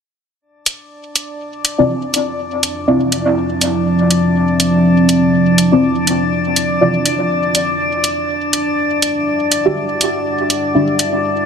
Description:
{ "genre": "dub techno", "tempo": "122 BPM", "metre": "4/4", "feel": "swing 56% on 16ths", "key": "D minor", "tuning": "A4 = 442 Hz", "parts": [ { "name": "deep dark ambient pad", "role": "sustained chords", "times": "3.2-11.5 s", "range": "F3 to F#5", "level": "-17 LUFS", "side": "equal", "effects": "chorus, built-in reverb" }, { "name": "drifting glass-harmonics texture", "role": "texture", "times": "1.0-11.5 s", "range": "D4 to D5", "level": "-19 LUFS", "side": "left 1 dB", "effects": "chorus, built-in reverb" }, { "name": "electronic hi-hat", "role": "drums", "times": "0.7-11.1 s", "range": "none", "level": "-14 LUFS", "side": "right 1 dB", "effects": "overdrive, studio ambience" }, { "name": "deep mellow chord stab", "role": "stabs", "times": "1.8-11.5 s", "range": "C4 to E5", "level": "-17 LUFS", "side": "equal", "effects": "chorus, phaser, dub echo" } ], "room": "moderate huge ambient reverb, RT60 4.7 s", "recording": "none", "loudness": "-13 LUFS", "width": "side -6 dB against mid", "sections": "0.4-11.5 A section", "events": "filter sweep on synth stab 0.4-11.5; filter sweep on ambient pad 0.4-11.5", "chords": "0.4 Dm9; 8.3 Em9" }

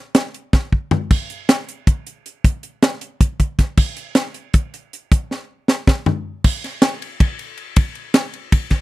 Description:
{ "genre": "rock", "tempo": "314 BPM (eighths)", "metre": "7/8", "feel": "straight", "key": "none", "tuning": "none", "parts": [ { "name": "crisp fusion drum kit", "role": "drums", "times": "0.1-8.8 s", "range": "crash cymbal, hi-hat, kick drum, ride cymbal, snare drum, toms", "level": "-15 LUFS", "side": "equal", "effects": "none" } ], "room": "little or no reverb", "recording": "dry, close 1970s-style studio recording", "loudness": "-17 LUFS", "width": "side -18 dB against mid", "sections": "0.0-6.4 A section; 6.4-8.8 B section", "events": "drum fill 0.5-1.1, 5.3-6.4", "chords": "none" }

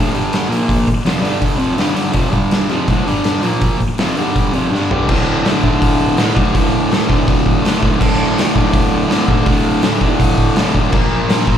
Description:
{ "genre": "garage rock duo or trio", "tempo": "164 BPM", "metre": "4/4", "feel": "straight", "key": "D minor", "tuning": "A4 = 440 Hz", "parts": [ { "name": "fuzz guitar", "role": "riff", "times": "0.0-11.6 s", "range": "D2 to Bb3", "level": "-15 LUFS", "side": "equal", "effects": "distortion, slapback echo" }, { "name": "oversized low-tuned drum kit", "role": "drums", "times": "0.1-11.6 s", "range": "crash cymbal, hi-hat, kick drum, snare drum, toms", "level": "-16 LUFS", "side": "equal", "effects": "none" } ], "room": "light reverb", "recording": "live gig heard through the venue's PA, club reverb", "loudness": "-12 LUFS", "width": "side -9 dB against mid", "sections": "0.0-5.1 A section; 5.1-11.6 B section", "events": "drum fill 4.7-5.1", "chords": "0.1 G5; 0.5 Bb5; 0.9 F5; 1.2 G5; 1.6 F5; 2.3 G5; 2.7 F5; 3.1 G5; 3.4 Bb5; 3.8 F5; 4.2 G5; 4.5 F5; 5.1 D5; 10.9 Bb5" }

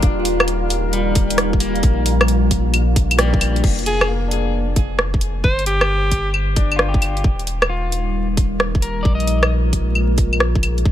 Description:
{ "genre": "future garage", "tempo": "133 BPM", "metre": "4/4", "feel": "swing 67% on 16ths", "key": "unclear", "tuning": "A4 = 444 Hz", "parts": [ { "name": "deep dark ambient pad", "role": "sustained chords", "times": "0.0-3.6, 7.9-10.9 s", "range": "F3 to Bb4", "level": "-24 LUFS", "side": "equal", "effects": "chorus, built-in reverb, sidechain pumping" }, { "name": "warm sub bass", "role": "bass", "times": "0.0-10.9 s", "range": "Eb1 to Bb1", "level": "-20 LUFS", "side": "equal", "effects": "sidechain pumping" }, { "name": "electronic kick drum", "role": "drums", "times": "0.0-10.9 s", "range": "none", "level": "-17 LUFS", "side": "equal", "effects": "none" }, { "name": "garage drum kit", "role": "drums", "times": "0.0-10.8 s", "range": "claves, crash cymbal, hi-hat, rim click", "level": "-20 LUFS", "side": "equal", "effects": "none" }, { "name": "flickering grainy texture", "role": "texture", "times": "0.0-3.6, 10.9 s", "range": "F4 to F5", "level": "-31 LUFS", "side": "equal", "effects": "built-in reverb" }, { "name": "electric guitar at the edge of break-up", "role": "accompaniment", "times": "0.9-9.5 s", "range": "G3 to Eb5", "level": "-28 LUFS", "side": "left 4 dB", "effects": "sidechain pumping, low-pass filter, ping-pong delay" }, { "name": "bright alto saxophone", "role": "melody", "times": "3.9-6.3 s", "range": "G4 to C5", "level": "-25 LUFS", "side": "left 1 dB", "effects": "ping-pong delay" } ], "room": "digital ambience", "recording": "vinyl crackle", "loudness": "-15 LUFS", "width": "side -11 dB against mid", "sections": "0.0-3.6 A section; 3.6-10.9 B section", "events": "band accent 3.2; filter sweep on clean electric guitar 3.6-10.9", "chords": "0.0 Eb; 1.8 Bb; 3.6 Fsus4; 5.4 G5; 7.2 Eb; 9.0 Bb7(no3)" }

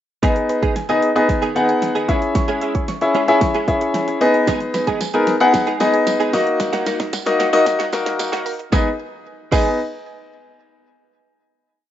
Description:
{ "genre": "dance-pop", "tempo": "113 BPM", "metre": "4/4", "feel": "straight", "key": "G# minor", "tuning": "A4 = 443 Hz", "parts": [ { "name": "clear concert grand piano", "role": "accompaniment", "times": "0.2-9.8 s", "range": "A#3 to F#5", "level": "-17 LUFS", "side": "left 2 dB", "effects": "sidechain pumping" }, { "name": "mallet-like synth pluck", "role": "arpeggios", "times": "0.2-9.8 s", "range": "D#4 to C#6", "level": "-30 LUFS", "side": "right 4 dB", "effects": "chorus, sidechain pumping, ping-pong delay" }, { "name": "direct-recorded clean electric guitar", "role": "riff", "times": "0.2-9.7 s", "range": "D#3 to G#4", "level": "-24 LUFS", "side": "right 5 dB", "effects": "ensemble chorus" }, { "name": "pop drum kit", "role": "drums", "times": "0.2-9.6 s", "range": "crash cymbal, hi-hat, kick drum, snare drum", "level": "-22 LUFS", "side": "right 1 dB", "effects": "none" }, { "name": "tambourine", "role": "percussion", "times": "4.5-9.8 s", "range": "none", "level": "-33 LUFS", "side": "right 8 dB", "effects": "none" } ], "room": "light reverb", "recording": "rough home demo mix, high-pass filter, nothing above 7.6 kHz", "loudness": "-15 LUFS", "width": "side -11 dB against mid", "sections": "0.2-8.7 build; 8.7-10.8 final chord", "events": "build-up 0.2-8.7; drum fill 0.2-8.7; filter sweep 0.2-8.7", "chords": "0.2 G#m; 2.1 C#m; 4.2 G#m; 6.3 D#m; 8.7 G#m" }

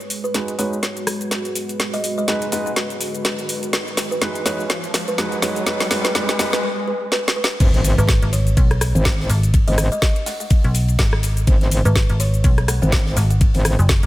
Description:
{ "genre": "bass house", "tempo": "124 BPM", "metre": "4/4", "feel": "swing 57% on 16ths", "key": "G# minor", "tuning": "A4 = 440 Hz", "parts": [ { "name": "dark analog pad", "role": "sustained chords", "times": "0.0-6.6 s", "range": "G#3 to B4", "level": "-29 LUFS", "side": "right 1 dB", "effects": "chorus, sidechain pumping" }, { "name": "garage drum kit", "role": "drums", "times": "0.0-14.1 s", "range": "crash cymbal, hi-hat, rim click, shaker, snare drum", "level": "-22 LUFS", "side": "left 1 dB", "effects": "none" }, { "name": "riser and impact", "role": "sound effects", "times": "0.0-9.5 s", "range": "none", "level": "-29 LUFS", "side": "left 1 dB", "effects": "none" }, { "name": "kalimba", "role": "melody", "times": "0.2-13.4 s", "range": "B4 to F#5", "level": "-28 LUFS", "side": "equal", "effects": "digital delay" }, { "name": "dark baby grand piano", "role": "stabs", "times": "0.3-6.6 s", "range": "G#3 to B4", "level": "-26 LUFS", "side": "right 1 dB", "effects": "sidechain pumping, low-pass filter, digital delay" }, { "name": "metallic wobble bass", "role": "bass", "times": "7.6-13.8 s", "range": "G#1", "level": "-18 LUFS", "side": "equal", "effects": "chorus, sidechain pumping" }, { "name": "crisp fusion drum kit", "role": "drums", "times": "7.6-14.0 s", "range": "hi-hat, ride cymbal, snare drum", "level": "-34 LUFS", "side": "left 2 dB", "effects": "high-pass filter on cymbals, high-pass filter on hats, high-pass filter on snare, high-pass filter on room" }, { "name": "electronic kick drum", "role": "drums", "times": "7.6-14.0 s", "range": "none", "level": "-16 LUFS", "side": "equal", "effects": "none" }, { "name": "metallic FM bass", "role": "bass", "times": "8.0-14.1 s", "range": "F#1 to B1", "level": "-17 LUFS", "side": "equal", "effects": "overdrive, sidechain pumping" } ], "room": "light reverb, small room ambience", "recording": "none", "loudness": "-16 LUFS", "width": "side -16 dB against mid", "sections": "0.0-7.6 A section; 7.6-14.1 B section", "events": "build-up 0.0-7.6; drum fill 0.0-6.6, 7.1-7.6; riser 0.0-6.6; filter sweep on grand piano 0.0-7.6; drop 7.6-14.1; impact 7.6-9.5", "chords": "0.0 G#m7; 7.6 G#m" }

